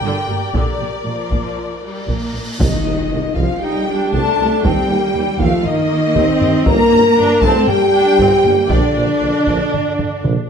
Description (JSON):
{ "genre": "cinematic, epic orchestral film score", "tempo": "118 BPM", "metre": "4/4", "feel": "straight", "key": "C dorian", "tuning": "A4 = 440 Hz", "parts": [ { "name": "warm symphonic violin section", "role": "melody", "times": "0.0-10.2 s", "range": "D5 to Bb5", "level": "-26 LUFS", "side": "left 4 dB", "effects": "none" }, { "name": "rich studio violin section", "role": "second line", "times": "0.0-10.2 s", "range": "Bb4 to Bb5", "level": "-24 LUFS", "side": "left 2 dB", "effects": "none" }, { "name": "rich chamber viola section", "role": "accompaniment", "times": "0.0-10.5 s", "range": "D3 to G4", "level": "-23 LUFS", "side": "right 3 dB", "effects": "none" }, { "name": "warm symphonic cello section", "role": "bass", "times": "0.0-10.2 s", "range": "G2 to Bb3", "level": "-22 LUFS", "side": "right 3 dB", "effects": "none" }, { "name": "warm symphonic double bass section", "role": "bass", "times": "0.0-10.3 s", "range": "G1 to G2", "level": "-25 LUFS", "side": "right 4 dB", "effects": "none" }, { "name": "taiko ensemble", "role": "drums", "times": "0.5-10.5 s", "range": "none", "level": "-21 LUFS", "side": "equal", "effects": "none" }, { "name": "cymbal swell and impact", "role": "sound effects", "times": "2.0-4.6 s", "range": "none", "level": "-28 LUFS", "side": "equal", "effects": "none" }, { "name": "large flute ensemble", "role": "second line", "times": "2.6-10.2 s", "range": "D5 to Bb5", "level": "-23 LUFS", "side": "left 1 dB", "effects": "none" }, { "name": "mellow French horn section", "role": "sustained chords", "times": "2.6-10.2 s", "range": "D4 to Bb4", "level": "-17 LUFS", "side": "left 2 dB", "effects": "none" }, { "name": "warm tuba", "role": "bass", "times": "2.6-10.3 s", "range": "G1 to Eb2", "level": "-24 LUFS", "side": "right 4 dB", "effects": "none" } ], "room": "moderate scoring stage reverb, RT60 1.7 s", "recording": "none", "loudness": "-13 LUFS", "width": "side -7 dB against mid", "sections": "0.0-2.6 A section; 2.6-10.5 A section", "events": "cymbal swell 2.0-2.6; impact 2.6-4.6; drum fill 10.0-10.5", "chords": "0.0 Gm; 0.6 Bb; 2.6 Cm; 4.6 Eb; 6.7 Gm; 8.7 Bb", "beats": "0.04 | 0.55 1.07 1.58 2.10 | 2.61 3.12 3.63 4.14 | 4.64 5.15 5.65 6.16 | 6.67 7.18 7.68 8.19 | 8.70 9.22 9.73 10.24" }